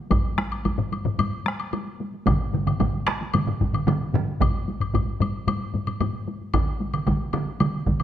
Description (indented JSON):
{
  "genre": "japanese traditional, taiko drum ensemble",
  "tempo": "112 BPM",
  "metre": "4/4",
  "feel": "straight",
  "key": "none",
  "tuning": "none",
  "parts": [
    { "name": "solo taiko drums", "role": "percussion", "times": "0.1-8.0 s", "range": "none", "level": "-26 LUFS", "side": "right 1 dB", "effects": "none" },
    { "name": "taiko ensemble", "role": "percussion", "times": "0.1-8.0 s", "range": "none", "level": "-29 LUFS", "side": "left 1 dB", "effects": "none" },
    { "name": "taiko ensemble", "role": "percussion", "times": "0.1-6.1 s", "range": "none", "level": "-27 LUFS", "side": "left 2 dB", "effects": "none" },
    { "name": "woodblock", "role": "percussion", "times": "0.1-8.0 s", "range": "none", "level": "-32 LUFS", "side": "left 5 dB", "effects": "none" },
    { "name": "taiko ensemble", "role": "percussion", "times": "2.3-8.0 s", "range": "none", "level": "-26 LUFS", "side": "right 3 dB", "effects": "none" }
  ],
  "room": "wet recital hall reverb, RT60 1.4 s",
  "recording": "none",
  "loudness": "-22 LUFS",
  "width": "side -10 dB against mid",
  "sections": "0.0-8.0 A section",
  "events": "none",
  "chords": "none",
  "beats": "| 0.11 0.65 1.19 1.73 | 2.27 2.81 3.34 3.88 | 4.41 4.95 5.48 6.01 | 6.54 7.08 7.61"
}